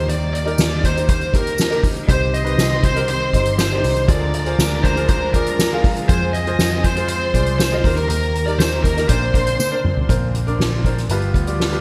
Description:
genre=piano-driven pop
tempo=120 BPM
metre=4/4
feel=straight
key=unclear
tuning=A4 = 440 Hz
part: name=bluesy overdriven lead guitar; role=melody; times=0.0-9.8 s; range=Bb4 to Eb5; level=-25 LUFS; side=equal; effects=distortion
part: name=bright upright piano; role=accompaniment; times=0.0-11.8 s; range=G2 to F5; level=-28 LUFS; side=equal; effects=subtle chorus
part: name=warm studio string section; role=sustained chords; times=0.0-11.8 s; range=D3 to D4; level=-34 LUFS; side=equal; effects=none
part: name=vintage muted picked electric bass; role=bass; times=0.0-11.8 s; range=G1 to F2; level=-24 LUFS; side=equal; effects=none
part: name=soft-mallet drum kit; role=drums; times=0.1-11.8 s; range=hi-hat, kick drum, snare drum, toms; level=-22 LUFS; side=equal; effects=gated reverb
part: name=tambourine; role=percussion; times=0.6-9.7 s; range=none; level=-31 LUFS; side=equal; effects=none
part: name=dark studio violin section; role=second line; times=2.1-10.1 s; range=Ab4 to C6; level=-31 LUFS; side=equal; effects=none
room=moderate lush hall reverb, RT60 1.8 s, small room reverb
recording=bright 1980s-style digital production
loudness=-18 LUFS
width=mono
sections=0.0-10.1 A section; 10.1-11.8 B section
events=drum fill 9.6-10.1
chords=0.0 Eb; 2.1 Cm; 4.1 Ddim; 6.1 Fm; 7.8 Eb; 9.1 Bbadd9; 11.1 G7

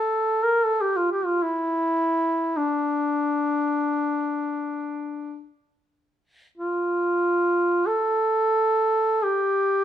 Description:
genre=caucasian folk, Caucasian lament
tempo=free time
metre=none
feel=none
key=D minor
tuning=A4 = 440 Hz
part: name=mellow duduk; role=solo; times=0.0-9.8 s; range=D4 to Bb4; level=-21 LUFS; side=equal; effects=none
room=moderate large studio reverb, RT60 1.1 s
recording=band playing live in one room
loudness=-21 LUFS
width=side -10 dB against mid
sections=0.0-9.8 A section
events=none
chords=none

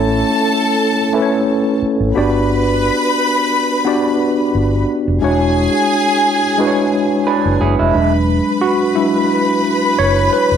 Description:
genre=lush 1970s-style soul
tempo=88 BPM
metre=4/4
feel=swing 54% on 16ths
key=unclear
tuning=A4 = 440 Hz
part: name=rich symphonic string section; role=second line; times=0.0-10.6 s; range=G#4 to B5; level=-18 LUFS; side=equal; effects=slapback echo
part: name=mellow tine electric piano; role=accompaniment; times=0.0-10.6 s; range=F#3 to D5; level=-15 LUFS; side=equal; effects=overdrive, medium stereo tremolo
part: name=vintage muted fingered electric bass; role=bass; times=0.0-10.6 s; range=E1 to A1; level=-18 LUFS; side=equal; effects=none
part: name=electric guitar through a small old amp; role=riff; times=7.3-8.1 s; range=G#3 to B4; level=-17 LUFS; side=right 7 dB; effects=phaser
room=light reverb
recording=none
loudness=-13 LUFS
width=side -8 dB against mid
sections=0.0-7.9 A section; 7.9-10.6 B section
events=tine electric piano solo 7.9-10.6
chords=0.0 A; 2.2 Gmaj7; 5.2 E13

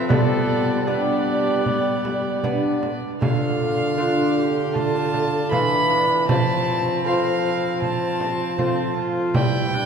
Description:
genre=classical, renaissance-style consort dance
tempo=78 BPM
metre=4/4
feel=straight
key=unclear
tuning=A4 = 440 Hz
part: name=mellow cornet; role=melody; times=0.0-9.8 s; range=G4 to D5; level=-31 LUFS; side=left 2 dB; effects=none
part: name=warm violin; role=second line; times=0.0-9.9 s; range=D5 to B5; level=-25 LUFS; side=right 1 dB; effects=none
part: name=lute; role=accompaniment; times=0.0-9.9 s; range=D3 to F5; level=-26 LUFS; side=equal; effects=none
part: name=rich viola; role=accompaniment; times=0.0-9.9 s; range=B3 to G4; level=-28 LUFS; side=left 4 dB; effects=none
part: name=dark bassoon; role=bass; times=0.1-9.9 s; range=D3 to G3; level=-25 LUFS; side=right 2 dB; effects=none
part: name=frame drum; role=percussion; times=0.1-9.7 s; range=none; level=-26 LUFS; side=right 2 dB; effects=none
room=wet cathedral reverb, RT60 4.8 s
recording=heard from further back in the room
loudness=-19 LUFS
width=side -6 dB against mid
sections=0.0-3.2 A section; 3.2-9.9 B section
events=none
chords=0.1 G; 3.2 Dm; 6.3 F; 9.3 G

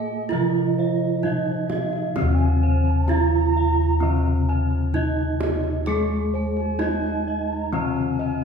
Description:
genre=Javanese gamelan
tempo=65 BPM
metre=4/4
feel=straight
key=Eb pelog barang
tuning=A4 = 442 Hz
part: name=gamelan-type bronze metallophone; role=melody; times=0.0-8.4 s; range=C4+20c to Ab4+30c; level=-25 LUFS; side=right 2 dB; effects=none
part: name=mellow hollow bansuri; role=second line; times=0.0-8.4 s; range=C5+23c to Bb5-41c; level=-30 LUFS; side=right 1 dB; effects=none
part: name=gamelan-type bronze metallophone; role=accompaniment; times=0.0-8.4 s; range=C3+20c to Bb3-40c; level=-29 LUFS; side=left 1 dB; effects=none
part: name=gamelan-type bronze metallophone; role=arpeggios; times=0.0-8.4 s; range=C5+20c to Ab5+30c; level=-34 LUFS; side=right 6 dB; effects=none
part: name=gamelan-type bossed gongs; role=bass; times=0.0-8.4 s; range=Eb2 to Bb4-40c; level=-23 LUFS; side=left 1 dB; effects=none
part: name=kendang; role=percussion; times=0.1-8.1 s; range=none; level=-32 LUFS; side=right 2 dB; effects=none
part: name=gamelan-type bossed gongs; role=arpeggios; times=0.3-8.4 s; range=C5+20c to Bb5-40c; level=-36 LUFS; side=left 1 dB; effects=none
room=wet recital hall reverb, RT60 1.4 s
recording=heard from further back in the room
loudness=-20 LUFS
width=side -6 dB against mid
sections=0.0-8.4 A section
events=none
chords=none

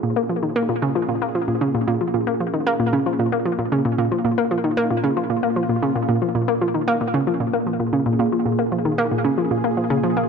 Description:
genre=ambient, sequencer-driven space music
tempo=114 BPM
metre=4/4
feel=straight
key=Bb minor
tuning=A4 = 440 Hz
part: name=sweeping resonant pad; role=sustained chords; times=0.0-10.3 s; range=Bb2 to Ab4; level=-25 LUFS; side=equal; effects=wide subtle chorus
part: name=analog pluck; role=riff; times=0.0-10.3 s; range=Bb2 to Bb3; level=-19 LUFS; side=equal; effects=chorus, tape echo
room=wet plate reverb, RT60 3.6 s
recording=none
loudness=-18 LUFS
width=side -6 dB against mid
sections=0.0-10.3 A section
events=none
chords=0.0 Bbm

